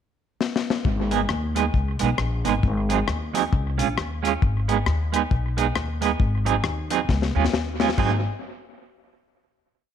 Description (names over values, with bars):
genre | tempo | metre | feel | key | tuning
ska | 135 BPM | 4/4 | swing 60% on 8ths | G# dorian | A4 = 435 Hz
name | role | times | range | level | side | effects
deep reggae drum kit | drums | 0.4-8.1 s | crash cymbal, hi-hat, kick drum, rim click, snare drum | -25 LUFS | left 4 dB | tape echo
upright bass | bass | 0.9-8.2 s | G#1 to D#2 | -25 LUFS | left 1 dB | none
clean electric guitar | accompaniment | 1.1-8.1 s | F#3 to G#4 | -25 LUFS | right 10 dB | tremolo
room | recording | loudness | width
light reverb, studio ambience | 1960s-style stereo | -21 LUFS | side -9 dB against mid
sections
0.0-0.8 pickup bar; 0.8-8.0 head; 8.0-9.8 final chord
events
drum fill 0.4-0.8, 7.1-8.0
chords
0.0 N.C.; 0.8 G#m; 2.6 G#7; 3.5 C#; 4.4 G#m; 6.2 G#7; 7.1 C#; 8.0 G#7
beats
0.40 | 0.85 1.29 1.74 2.18 | 2.63 3.08 3.52 3.97 | 4.42 4.86 5.31 5.75 | 6.20 6.64 7.09 7.53 | 7.98